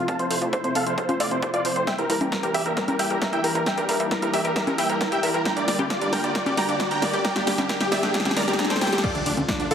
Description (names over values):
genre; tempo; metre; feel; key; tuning
uplifting trance; 134 BPM; 4/4; straight; unclear; A4 = 440 Hz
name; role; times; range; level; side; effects
supersaw chords; melody; 0.0-9.7 s; D4 to Bb5; -26 LUFS; right 1 dB; sidechain pumping, low-pass filter, digital delay
warm concert grand piano; second line; 0.0-9.7 s; D4 to Bb5; -32 LUFS; equal; none
lush unison pad; sustained chords; 0.0-9.7 s; C3 to G4; -31 LUFS; left 1 dB; chorus, sidechain pumping
analog pluck; arpeggios; 0.0-9.0 s; C4 to Bb5; -30 LUFS; equal; chorus, sidechain pumping, digital delay
plucky analog bass; bass; 0.0-9.7 s; C2 to G2; -32 LUFS; equal; sidechain pumping, high-pass filter
riser, swell and impact; sound effects; 0.1-9.7 s; none; -33 LUFS; left 1 dB; none
electronic kick drum; drums; 0.1-9.6 s; none; -32 LUFS; equal; overdrive, high-pass filter on kick, high-pass filter on room
punchy analog drum machine; drums; 0.1-9.7 s; congas, crash cymbal, hi-hat, snare drum; -27 LUFS; left 1 dB; overdrive, sidechain pumping on hats, sidechain pumping on perc, sidechain pumping on cymbals
room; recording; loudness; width
moderate digital room reverb, RT60 1.1 s, digital ambience; heavily compressed radio sound, multiband compression; -21 LUFS; side -8 dB against mid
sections
0.0-9.0 A section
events
build-up 0.0-9.0; filter sweep on supersaw synth 0.0-9.0; filter sweep on synth pluck 0.0-9.0; riser 0.1-9.0; drum fill 1.9-9.0; swell 8.1-9.0; impact 9.0-9.7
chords
0.0 F; 1.9 Edim/G; 5.5 Gm; 9.0 Dm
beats
| 0.08 0.53 0.98 1.43 | 1.87 2.32 2.77 3.22 | 3.67 4.11 4.56 5.01 | 5.46 5.90 6.35 6.80 | 7.25 7.69 8.14 8.59 | 9.04 9.48